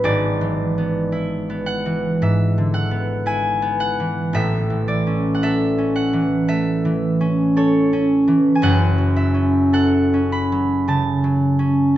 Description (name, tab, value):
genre	classical, solo harp piece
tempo	56 BPM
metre	4/4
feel	rubato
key	A major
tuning	A4 = 440 Hz
part	concert harp	solo	0.0-12.0 s	F#1 to B5	-16 LUFS	equal	none
room	moderate recital hall reverb, RT60 1.7 s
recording	nothing above 7.8 kHz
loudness	-16 LUFS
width	side -13 dB against mid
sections	0.0-12.0 A section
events	none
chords	0.1 E7/G#; 4.4 A; 8.6 F#m